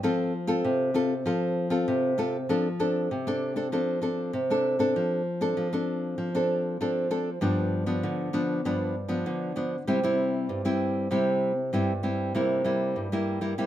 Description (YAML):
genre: samba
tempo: 97 BPM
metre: 4/4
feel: straight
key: F major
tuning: A4 = 441 Hz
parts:
  - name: nylon-string guitar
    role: solo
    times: 0.0-13.7 s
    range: G2 to A4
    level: -25 LUFS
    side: equal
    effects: none
room: moderate studio reverb, RT60 0.9 s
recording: minimal, uncompressed stereo recording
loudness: -25 LUFS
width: side -12 dB against mid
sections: 0.0-2.5 A section; 2.5-13.7 B section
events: none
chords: 0.0 F; 2.5 F6; 4.9 Dm7/F; 7.4 G7; 9.9 C; 12.4 C7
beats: | 0.03 0.64 1.26 1.87 | 2.49 3.10 3.72 4.33 | 4.95 5.57 6.18 6.80 | 7.42 8.03 8.65 9.27 | 9.88 10.50 11.12 11.73 | 12.35 12.97 13.59